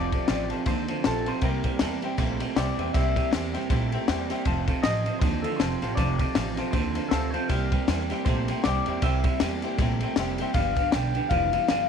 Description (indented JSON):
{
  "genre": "rockabilly",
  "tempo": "158 BPM",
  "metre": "4/4",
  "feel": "swing 58% on 8ths",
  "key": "C mixolydian",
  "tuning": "A4 = 440 Hz",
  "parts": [
    { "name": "electric guitar through a small old amp", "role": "melody", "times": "0.0-11.9 s", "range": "A4 to G5", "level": "-30 LUFS", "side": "left 4 dB", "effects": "phaser, tape echo" },
    { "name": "picked steel-string acoustic guitar", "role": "accompaniment", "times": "0.0-11.9 s", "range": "G2 to A4", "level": "-35 LUFS", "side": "left 10 dB", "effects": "none" },
    { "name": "warm upright piano", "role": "accompaniment", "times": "0.0-11.8 s", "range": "B4 to A5", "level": "-36 LUFS", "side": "left 11 dB", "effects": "none" },
    { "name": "electric guitar through a small old amp", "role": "riff", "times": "0.0-11.9 s", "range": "F2 to A3", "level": "-31 LUFS", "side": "right 14 dB", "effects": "none" },
    { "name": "upright bass", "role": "bass", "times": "0.0-11.8 s", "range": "F1 to E2", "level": "-30 LUFS", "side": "right 2 dB", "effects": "none" },
    { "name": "compact cocktail drum kit", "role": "drums", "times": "0.1-11.8 s", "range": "kick drum, ride cymbal, snare drum", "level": "-28 LUFS", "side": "left 2 dB", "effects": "none" }
  ],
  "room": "light reverb, studio reverb",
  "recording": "1960s-style stereo with parts hard left and right",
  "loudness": "-23 LUFS",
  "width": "side -7 dB against mid",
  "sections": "0.0-11.9 A section",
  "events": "none",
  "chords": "0.0 F7; 1.4 C7; 4.5 F7; 7.5 C7; 10.5 G7"
}